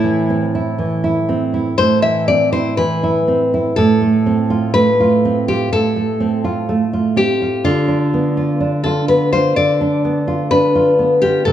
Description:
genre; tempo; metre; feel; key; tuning
romantic duo for nylon-string guitar and classical guitar; 62 BPM; 4/4; rubato; unclear; A4 = 438 Hz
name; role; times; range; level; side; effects
nylon-string guitar; melody; 0.0-11.5 s; E4 to E5; -16 LUFS; left 3 dB; none
nylon-string guitar; accompaniment; 0.0-11.5 s; A2 to F4; -16 LUFS; right 3 dB; none
room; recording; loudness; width
wet recital hall reverb, RT60 1.7 s; small room ambience; -13 LUFS; side -11 dB against mid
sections
0.0-11.5 A section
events
none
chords
0.0 Am; 3.8 F/A; 7.7 Bdim/D

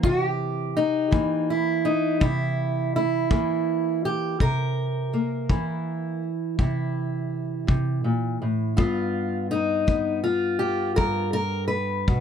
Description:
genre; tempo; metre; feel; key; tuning
acoustic country blues, solo or duo; 55 BPM (dotted quarters); 12/8; straight; C mixolydian; A4 = 440 Hz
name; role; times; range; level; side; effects
fingerpicked steel-string acoustic guitar; melody; 0.0-12.2 s; G2 to B4; -23 LUFS; equal; none
kick drum; drums; 0.0-12.2 s; none; -22 LUFS; left 1 dB; none
room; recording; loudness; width
moderate booth ambience, RT60 0.2 s; none; -22 LUFS; side -8 dB against mid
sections
0.0-12.2 A section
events
none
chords
0.0 C7; 8.8 G7

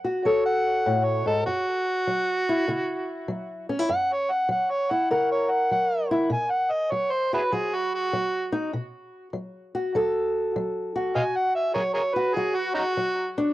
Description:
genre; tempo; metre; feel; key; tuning
acoustic country blues, solo or duo; 99 BPM; 4/4; swing 66% on 8ths; unclear; A4 = 441 Hz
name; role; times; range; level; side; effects
fingerpicked old ladder-braced acoustic guitar; accompaniment; 0.0-13.5 s; F#2 to A#4; -26 LUFS; left 1 dB; cassette tape
overdriven harmonica; melody; 0.3-13.3 s; C#4 to G#5; -24 LUFS; right 1 dB; cassette tape, analog delay
room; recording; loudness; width
light reverb; home recording on cassette; -22 LUFS; side -16 dB against mid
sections
0.0-13.5 A section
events
harmonica solo 0.0-13.5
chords
0.0 N.C.; 1.5 F#7; 6.3 B7(no3); 11.1 B5

